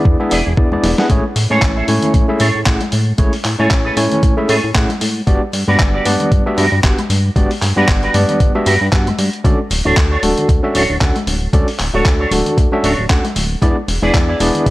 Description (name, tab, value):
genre	nu-disco, nu disco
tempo	115 BPM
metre	4/4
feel	swing 56% on 16ths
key	A major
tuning	A4 = 440 Hz
part	overdriven tine electric piano	accompaniment	0.0-14.7 s	G3 to G#5	-18 LUFS	equal	fast tremolo, tape echo
part	chorused synth bass	bass	0.1-14.7 s	D1 to A2	-18 LUFS	equal	none
part	electronic kick drum	drums	0.1-14.7 s	none	-14 LUFS	equal	none
part	congas	percussion	0.2-14.6 s	none	-25 LUFS	left 2 dB	none
part	electric guitar with an envelope filter	riff	0.3-14.6 s	D4 to E5	-20 LUFS	right 2 dB	ensemble chorus, tape echo
part	dusty soul sampler-style drum kit	drums	0.3-14.7 s	handclaps, hi-hat, snare drum	-21 LUFS	equal	overdrive
room	light reverb, digital ambience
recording	none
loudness	-12 LUFS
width	side -18 dB against mid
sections	0.0-14.7 A section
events	drum fill 0.8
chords	0.0 E7; 1.1 Amaj7; 5.3 Gmaj7; 9.4 Dmaj7; 13.6 E7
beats	0.06 0.58 | 1.10 1.62 2.14 2.66 | 3.19 3.71 4.23 4.75 | 5.27 5.79 6.32 6.84 | 7.36 7.88 8.40 8.93 | 9.45 9.97 10.49 11.01 | 11.53 12.06 12.58 13.10 | 13.62 14.14 14.66